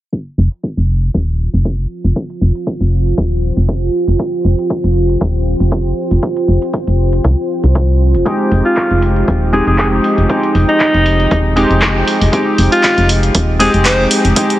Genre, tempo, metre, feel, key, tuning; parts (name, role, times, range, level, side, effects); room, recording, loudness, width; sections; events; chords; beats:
deep house; 118 BPM; 4/4; swing 55% on 16ths; F minor; A4 = 441 Hz
electronic kick drum; drums; 0.1-14.5 s; -19 LUFS; equal; high-pass filter on kick
punchy analog drum machine; drums; 0.1-14.6 s; handclaps, hi-hat; -19 LUFS; equal
deep dark ambient pad; texture; 1.9-14.6 s; F4 to G5; -20 LUFS; right 1 dB; chorus, built-in reverb, sidechain pumping
woody FM bass; bass; 0.4-14.3 s; Eb1 to C2; -13 LUFS; equal; sidechain pumping
warm analog keys; stabs; 8.3-14.6 s; Ab3 to G4; -15 LUFS; equal; chorus, vintage 12-bit sampler grit, sidechain pumping, digital delay
bright alto saxophone; melody; 8.7-14.1 s; Eb4 to C5; -16 LUFS; equal; tape echo
light reverb; heavily compressed radio sound, low-pass filter; -11 LUFS; side -14 dB against mid
0.1-14.6 A section
filter sweep on FM bass 0.1-14.6; filter sweep 0.1-14.6
0.1 Fm9
| 0.13 0.63 1.14 1.65 | 2.16 2.67 3.18 3.69 | 4.19 4.70 5.21 5.72 | 6.23 6.74 7.24 7.75 | 8.26 8.77 9.28 9.79 | 10.29 10.80 11.31 11.82 | 12.33 12.84 13.35 13.86 | 14.36